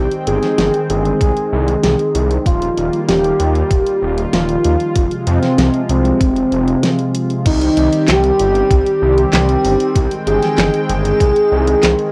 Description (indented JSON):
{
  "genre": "synthwave",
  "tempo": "96 BPM",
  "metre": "4/4",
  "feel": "straight",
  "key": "unclear",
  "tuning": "A4 = 439 Hz",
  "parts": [
    { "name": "soft octave-layered synth lead", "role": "melody", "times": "0.0-12.1 s", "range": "C4 to Ab4", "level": "-19 LUFS", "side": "equal", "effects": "chorus, cassette tape, tape echo" },
    { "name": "warm analog pad", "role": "sustained chords", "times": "0.0-12.1 s", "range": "C3 to G5", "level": "-23 LUFS", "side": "equal", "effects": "chorus, sidechain pumping, cassette tape" },
    { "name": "detuned saw bass", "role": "bass", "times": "0.0-11.9 s", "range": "Eb1 to F2", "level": "-20 LUFS", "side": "equal", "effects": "chorus, sidechain pumping" },
    { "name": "pop drum kit", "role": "drums", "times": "0.1-12.1 s", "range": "crash cymbal, handclaps, hi-hat, snare drum", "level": "-22 LUFS", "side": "equal", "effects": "studio reverb, cassette tape" },
    { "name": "electronic kick drum", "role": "drums", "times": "1.2-11.3 s", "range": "none", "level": "-18 LUFS", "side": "equal", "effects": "studio reverb, cassette tape" },
    { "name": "airy dreamy lead", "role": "second line", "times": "7.5-12.1 s", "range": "Eb4 to Ab4", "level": "-22 LUFS", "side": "equal", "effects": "chorus, cassette tape" }
  ],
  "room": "moderate booth ambience, RT60 0.2 s",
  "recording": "home recording on cassette",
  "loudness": "-15 LUFS",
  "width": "mono",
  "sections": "0.0-7.5 A section; 7.5-12.1 B section",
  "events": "break 6.8-7.5",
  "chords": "0.0 Abmaj7; 2.5 Ebadd9; 5.0 Fm; 7.5 Cm; 10.0 Abmaj7",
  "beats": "0.58 1.21 1.83 | 2.46 3.08 3.71 4.33 | 4.96 5.58 6.21 6.83 | 7.46 8.08 8.71 9.33 | 9.96 10.58 11.21 11.83"
}